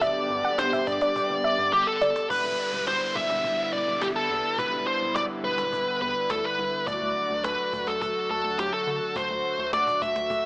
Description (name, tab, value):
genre	synth-pop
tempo	105 BPM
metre	4/4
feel	straight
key	unclear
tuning	A4 = 440 Hz
part	bluesy overdriven lead guitar	melody	0.0-10.5 s	G4 to E5	-24 LUFS	equal	distortion
part	soft round pluck	second line	0.0-2.1 s	D5 to F#5	-28 LUFS	equal	chorus, tape echo
part	mellow synth brass	accompaniment	0.0-1.5 s	B3 to G4	-32 LUFS	equal	chorus
part	chorused pulse-width pad	sustained chords	0.0-10.5 s	D3 to F#4	-34 LUFS	equal	none
part	rubbery square bass	bass	0.0-10.4 s	E1 to D3	-40 LUFS	equal	none
part	cajon	drums	0.0-10.4 s	none	-37 LUFS	equal	none
part	downlifter	sound effects	2.3-6.9 s	none	-37 LUFS	equal	none
room	moderate lush hall reverb, RT60 2.4 s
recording	small speaker sound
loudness	-23 LUFS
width	side -25 dB against mid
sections	0.0-2.3 A section; 2.3-10.5 B section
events	drum fill 1.7-2.3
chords	0.0 G; 2.3 Em7; 6.9 D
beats	| 0.01 0.58 1.16 1.73 | 2.30 2.87 3.44 4.01 | 4.58 5.16 5.73 6.30 | 6.87 7.44 8.01 8.59 | 9.16 9.73 10.30